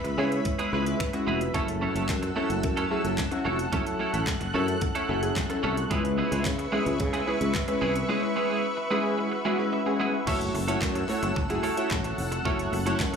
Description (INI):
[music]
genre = dance-pop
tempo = 110 BPM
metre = 4/4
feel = straight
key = F# minor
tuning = A4 = 440 Hz
[part]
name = lush unison pad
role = sustained chords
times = 0.0-13.2 s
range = A4 to F#6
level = -33 LUFS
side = left 1 dB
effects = chorus, sidechain pumping
[part]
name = twelve-string electric guitar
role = riff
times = 0.0-13.2 s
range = G#3 to A4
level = -32 LUFS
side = right 5 dB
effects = analog chorus, slapback echo
[part]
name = sustaining fretless electric bass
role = bass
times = 0.0-13.2 s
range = E#1 to C#3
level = -30 LUFS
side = left 1 dB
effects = sidechain pumping
[part]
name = pop drum kit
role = drums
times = 0.0-13.2 s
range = crash cymbal, finger snaps, handclaps, hi-hat, kick drum, snare drum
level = -31 LUFS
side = equal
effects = none
[part]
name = warm analog keys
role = accompaniment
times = 0.2-13.2 s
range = F#3 to C#6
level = -29 LUFS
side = left 1 dB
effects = chorus, sidechain pumping, slapback echo
[part]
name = swell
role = sound effects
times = 8.6-10.3 s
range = none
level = -40 LUFS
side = left 2 dB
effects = slapback echo
[part]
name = group handclap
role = percussion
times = 10.8-13.1 s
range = none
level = -42 LUFS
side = left 2 dB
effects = none
[sound]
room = light reverb, digital ambience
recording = live gig heard through the venue's PA, club reverb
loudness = -24 LUFS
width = side -6 dB against mid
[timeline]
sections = 0.0-10.3 A section; 10.3-13.2 B section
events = synth keys fill 4.3-5.9, 9.5-10.3; swell 8.6-10.3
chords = 0.0 C#m7; 1.5 F#m7; 5.9 C#m7; 10.3 F#m7